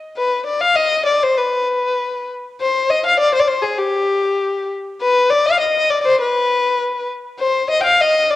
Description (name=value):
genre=klezmer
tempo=99 BPM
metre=2/4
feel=straight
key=unclear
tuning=A4 = 442 Hz
part: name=dark violin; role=solo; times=0.2-8.4 s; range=G4 to G5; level=-15 LUFS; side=left 2 dB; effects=none
room=wet spring reverb, RT60 1.8 s, studio reverb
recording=home recording on cassette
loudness=-14 LUFS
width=side -14 dB against mid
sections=0.0-5.0 A section; 5.0-8.4 A section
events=none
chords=none